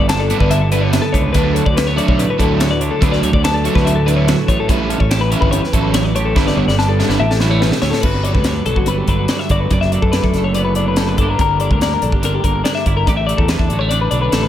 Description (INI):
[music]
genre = math rock and midwest emo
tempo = 143 BPM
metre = 4/4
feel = straight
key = unclear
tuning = A4 = 441 Hz
[part]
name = twelve-string electric guitar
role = accompaniment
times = 0.0-14.5 s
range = D2 to G4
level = -21 LUFS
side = right 5 dB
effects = tape echo
[part]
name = twelve-string electric guitar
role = arpeggios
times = 0.0-14.5 s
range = F#4 to A5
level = -19 LUFS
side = left 6 dB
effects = spring reverb, tape echo
[part]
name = fuzz fingered electric bass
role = bass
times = 0.0-14.5 s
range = F#1 to F#2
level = -18 LUFS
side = equal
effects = overdrive
[part]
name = crisp fusion drum kit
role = drums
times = 0.1-14.4 s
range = crash cymbal, hi-hat, kick drum, snare drum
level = -19 LUFS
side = equal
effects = tape echo
[part]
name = crunchy overdriven guitar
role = riff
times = 0.3-7.7 s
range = D3 to E4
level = -20 LUFS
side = right 2 dB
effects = tape echo
[sound]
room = light reverb, studio reverb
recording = echo-heavy mix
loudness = -13 LUFS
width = side -11 dB against mid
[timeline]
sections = 0.0-8.0 A section; 8.0-14.5 B section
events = drum fill 6.4-8.0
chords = 0.0 G69; 1.3 D69; 4.5 G69; 7.2 A7; 8.0 Gmaj9; 9.7 Bm7/F#; 11.2 Gm6; 13.1 Gadd9